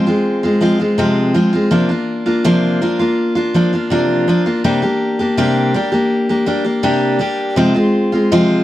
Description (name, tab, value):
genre	pop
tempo	82 BPM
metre	4/4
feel	straight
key	unclear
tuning	A4 = 440 Hz
part	picked steel-string acoustic guitar	solo	0.0-8.6 s	C3 to G4	-13 LUFS	equal	none
room	light reverb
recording	dry, close 1970s-style studio recording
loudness	-13 LUFS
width	side -14 dB against mid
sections	0.0-8.6 A section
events	none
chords	0.0 Fm; 1.7 Bb/C; 4.6 Gm/C; 7.6 Fm/C